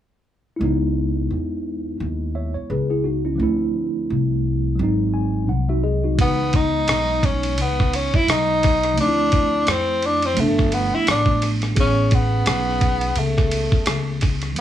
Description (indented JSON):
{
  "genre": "hip hop, jazz-hop",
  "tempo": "86 BPM",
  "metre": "4/4",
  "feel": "swing 58% on 16ths",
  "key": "C# minor",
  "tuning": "A4 = 440 Hz",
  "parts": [
    { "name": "mellow tine electric piano", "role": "accompaniment", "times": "0.6-14.6 s", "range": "D#3 to G#5", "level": "-24 LUFS", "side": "right 1 dB", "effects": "medium stereo tremolo" },
    { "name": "upright bass", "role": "bass", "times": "0.6-14.6 s", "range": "G1 to F2", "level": "-23 LUFS", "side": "equal", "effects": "none" },
    { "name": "breathy tenor saxophone", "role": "melody", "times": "6.2-14.2 s", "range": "A3 to E4", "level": "-20 LUFS", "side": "equal", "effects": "none" },
    { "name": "dusty soul sampler-style drum kit", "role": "drums", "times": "6.2-14.6 s", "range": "hi-hat, kick drum, ride cymbal, rim click", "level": "-22 LUFS", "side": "equal", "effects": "none" }
  ],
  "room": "light reverb",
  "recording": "none",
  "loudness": "-18 LUFS",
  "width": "side -11 dB against mid",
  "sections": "0.6-6.2 A section; 6.2-14.6 B section",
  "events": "tine electric piano fill 4.8-6.2",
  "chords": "0.6 C#m7; 3.4 Dm7; 4.8 G#7; 6.2 C#m7; 9.0 Dm7; 10.4 G9; 11.8 Amaj7"
}